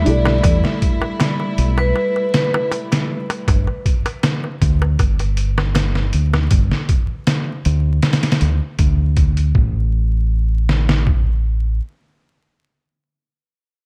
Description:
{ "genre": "trip hop", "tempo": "79 BPM", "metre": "4/4", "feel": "swing 53% on 16ths", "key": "unclear", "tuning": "A4 = 442 Hz", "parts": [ { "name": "felt-muted upright piano", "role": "accompaniment", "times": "0.0-0.8 s", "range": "D4 to A4", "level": "-26 LUFS", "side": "equal", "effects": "tremolo, tape echo" }, { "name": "warm chamber string section", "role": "sustained chords", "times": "0.0-3.4 s", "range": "G3 to E4", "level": "-26 LUFS", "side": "equal", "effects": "none" }, { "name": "deep dub fingered electric bass", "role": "bass", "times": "0.0-11.8 s", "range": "G1 to E2", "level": "-19 LUFS", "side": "equal", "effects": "none" }, { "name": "vibraphone with medium hard mallets", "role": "melody", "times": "0.1-2.7 s", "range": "B4 to D5", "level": "-26 LUFS", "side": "equal", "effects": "tape echo" }, { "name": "trip hop sampler-style drum kit", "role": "drums", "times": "0.1-11.3 s", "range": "hi-hat, kick drum, snare drum", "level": "-20 LUFS", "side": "equal", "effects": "none" }, { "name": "darbuka", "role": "percussion", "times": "0.3-6.5 s", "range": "none", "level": "-29 LUFS", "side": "equal", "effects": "none" } ], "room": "little or no reverb", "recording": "dark, warm production, vinyl crackle", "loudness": "-18 LUFS", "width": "mono", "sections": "0.0-9.6 A section; 9.6-12.6 B section", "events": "none", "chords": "0.0 G69/B; 3.5 G5; 9.6 N.C." }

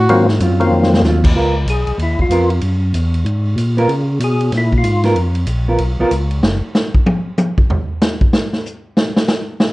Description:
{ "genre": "soul jazz organ trio", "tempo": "189 BPM", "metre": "4/4", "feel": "swing 62% on 8ths", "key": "Db mixolydian", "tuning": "A4 = 441 Hz", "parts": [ { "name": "tonewheel organ", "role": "bass", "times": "0.0-6.6 s", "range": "Gb1 to Db3", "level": "-16 LUFS", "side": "equal", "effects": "overdrive, chorus vibrato, slow rotary speaker" }, { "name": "percussive tonewheel organ", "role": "melody", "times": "0.1-5.0 s", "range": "Eb3 to Ab4", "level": "-17 LUFS", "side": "left 1 dB", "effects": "slow rotary speaker, chorus vibrato, plate reverb" }, { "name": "vintage drum kit", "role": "drums", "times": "0.1-9.7 s", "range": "crash cymbal, hi-hat, kick drum, ride cymbal, snare drum, toms", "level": "-17 LUFS", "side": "equal", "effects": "none" }, { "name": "hollow-body jazz guitar", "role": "accompaniment", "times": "0.4-6.1 s", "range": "Gb3 to Bb4", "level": "-17 LUFS", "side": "right 2 dB", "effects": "none" } ], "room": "light reverb", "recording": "worn, warbling old tape, cassette tape, warbly pitch drift, nothing above 10.5 kHz", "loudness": "-13 LUFS", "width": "side -20 dB against mid", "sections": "0.0-1.4 A section; 1.4-9.7 A section", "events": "drum fill 0.7-1.0; tonewheel organ solo 1.4-9.7; drum solo 6.4-9.7", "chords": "0.1 Ab13; 1.4 Db13; 2.6 Gb9; 3.9 Db6; 6.4 N.C." }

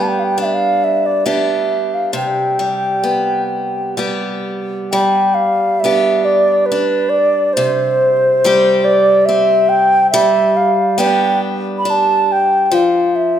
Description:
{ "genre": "celtic folk, Celtic slow air", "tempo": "69 BPM", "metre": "3/4", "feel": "rubato", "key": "G mixolydian", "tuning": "A4 = 437 Hz", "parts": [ { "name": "reedy baroque flute", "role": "melody", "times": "0.0-13.4 s", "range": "B4 to B5", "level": "-13 LUFS", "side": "equal", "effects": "none" }, { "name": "picked steel-string acoustic guitar", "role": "accompaniment", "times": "0.0-13.4 s", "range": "C3 to G4", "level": "-18 LUFS", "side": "equal", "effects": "none" } ], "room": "moderate scoring stage reverb, RT60 1.8 s", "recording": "minimal, uncompressed stereo recording", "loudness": "-12 LUFS", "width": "side -10 dB against mid", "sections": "0.0-4.9 A section; 4.9-13.4 B section", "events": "none", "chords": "0.0 G; 2.2 C5; 4.9 G; 7.6 C5; 10.1 G; 12.7 N.C." }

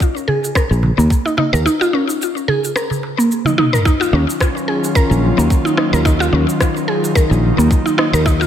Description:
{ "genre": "organic downtempo", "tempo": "109 BPM", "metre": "4/4", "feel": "swing 55% on 16ths", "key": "Eb minor", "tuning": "A4 = 439 Hz", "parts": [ { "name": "deep house drum kit", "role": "drums", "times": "0.0-8.5 s", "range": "rim click, shaker, toms", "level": "-24 LUFS", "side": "equal", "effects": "small room ambience" }, { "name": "electronic kick drum", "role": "drums", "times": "0.0-8.4 s", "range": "none", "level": "-15 LUFS", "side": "equal", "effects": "small room ambience" }, { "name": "mallet-like synth pluck", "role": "arpeggios", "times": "0.3-8.5 s", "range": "Bb3 to Bb4", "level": "-17 LUFS", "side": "equal", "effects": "chorus, ping-pong delay" }, { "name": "darbuka", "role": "percussion", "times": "0.3-3.8 s", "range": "none", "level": "-23 LUFS", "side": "right 3 dB", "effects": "none" }, { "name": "sustaining fretless electric bass", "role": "bass", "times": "0.7-8.5 s", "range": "Bb1 to Eb2", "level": "-15 LUFS", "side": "equal", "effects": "none" }, { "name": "airy breathy pad", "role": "sustained chords", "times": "3.9-8.5 s", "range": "C#3 to F4", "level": "-19 LUFS", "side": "left 1 dB", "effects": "chorus, sidechain pumping" } ], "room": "moderate plate reverb, RT60 2.2 s", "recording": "dreamy mix soaked in reverb", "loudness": "-13 LUFS", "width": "side -10 dB against mid", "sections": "0.0-3.9 A section; 3.9-8.5 B section", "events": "kick drops out 1.7-3.9; drum fill 3.4-3.9", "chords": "0.0 Bbsus4; 3.9 Ebm9" }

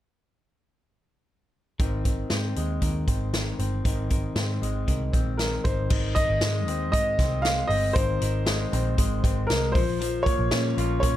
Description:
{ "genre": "jangly indie pop", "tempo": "117 BPM", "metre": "4/4", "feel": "straight", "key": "Ab major", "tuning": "A4 = 439 Hz", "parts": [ { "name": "electric guitar through a small old amp", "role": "arpeggios", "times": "1.8-11.2 s", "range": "Eb3 to F4", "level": "-31 LUFS", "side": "left 3 dB", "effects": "none" }, { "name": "vintage muted picked electric bass", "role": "bass", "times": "1.8-11.2 s", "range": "G1 to Bb2", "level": "-28 LUFS", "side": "equal", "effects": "none" }, { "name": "vintage drum kit", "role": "drums", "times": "1.8-11.1 s", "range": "crash cymbal, hi-hat, kick drum, snare drum", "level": "-26 LUFS", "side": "equal", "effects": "none" }, { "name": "warm upright piano", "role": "melody", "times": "5.4-11.2 s", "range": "Bb4 to F5", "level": "-27 LUFS", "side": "equal", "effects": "ping-pong delay" } ], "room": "light reverb", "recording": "none", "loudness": "-22 LUFS", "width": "side -13 dB against mid", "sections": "1.8-5.9 A section; 5.9-11.2 B section", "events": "none", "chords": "1.8 Ab; 9.8 Bbm" }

